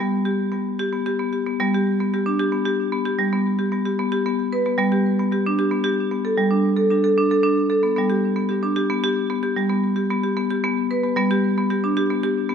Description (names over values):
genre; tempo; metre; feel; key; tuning
world meditative, meditative tuned percussion; 75 BPM (dotted quarters); 6/8; straight; G major pentatonic; A4 = 440 Hz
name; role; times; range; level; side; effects
marimba with hard mallets; solo; 0.0-12.5 s; G3 to B4; -19 LUFS; equal; ping-pong delay
room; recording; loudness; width
moderate scoring stage reverb, RT60 2.1 s; none; -19 LUFS; side -7 dB against mid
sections
0.0-1.6 A section; 1.6-12.5 B section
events
none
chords
0.0 G; 4.8 Gadd9; 8.0 G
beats
0.79 | 1.59 2.39 | 3.19 3.98 | 4.78 5.58 | 6.38 7.17 | 7.97 8.77 | 9.56 10.36 | 11.16 11.96